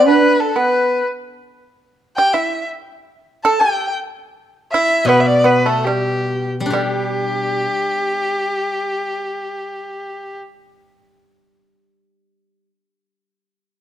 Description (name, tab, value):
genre	chinese traditional, Chinese chamber ensemble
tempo	64-97 BPM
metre	2/4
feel	rubato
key	G gong mode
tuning	A4 = 440 Hz
part	rich erhu	melody	0.0-10.4 s	G4 to A5	-18 LUFS	left 1 dB	none
part	bright reedy large dizi	second line	0.0-1.1 s	A4 to B4	-19 LUFS	left 4 dB	none
part	pipa	second line	0.0-10.4 s	G3 to A4	-18 LUFS	right 5 dB	none
part	steel-string zither	accompaniment	5.0-12.7 s	B2 to G4	-22 LUFS	left 3 dB	none
room	moderate recital hall reverb, RT60 1.6 s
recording	dark, warm production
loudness	-15 LUFS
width	side -11 dB against mid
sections	0.0-6.7 A section; 6.7-10.4 B section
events	slowing down 3.7-6.7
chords	none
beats	0.55 | 1.21 1.85 | 2.49 3.12 | 3.74 4.38 | 5.07 5.84 | 6.73 7.65 | 8.55 9.45